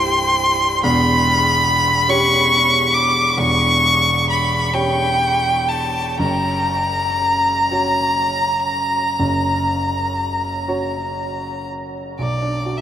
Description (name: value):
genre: classical, romantic duo for violin and grand piano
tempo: 39-49 BPM (dotted quarters)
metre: 12/8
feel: rubato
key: unclear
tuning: A4 = 440 Hz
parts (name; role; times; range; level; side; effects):
- rich violin; melody; 0.0-12.8 s; D5 to D6; -16 LUFS; left 1 dB; none
- warm grand piano; accompaniment; 0.0-12.8 s; C1 to C#5; -21 LUFS; right 1 dB; none
room: wet huge ambient reverb, RT60 8.6 s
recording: in a vast, echoing space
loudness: -15 LUFS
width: side -10 dB against mid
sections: 0.0-12.2 A section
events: none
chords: 0.0 C; 0.8 C#m7b5/E; 6.2 F#; 12.2 Bm